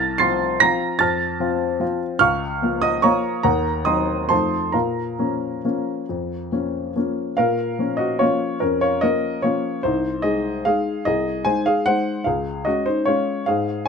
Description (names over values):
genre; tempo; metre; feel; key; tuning
classical, piano waltz; 129-156 BPM; 3/4; rubato; Bb minor; A4 = 440 Hz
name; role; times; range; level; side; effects
warm baby grand piano; solo; 0.0-13.9 s; C2 to C7; -19 LUFS; equal; none
room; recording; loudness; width
light reverb; close, detailed microphones; -19 LUFS; side -6 dB against mid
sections
0.0-7.4 A section; 7.4-13.9 B section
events
none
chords
0.0 F/C; 2.2 Bbm/Db; 3.5 Cm7b5/Eb; 4.3 F7; 4.7 Bbm; 9.8 Ab/C; 12.3 Db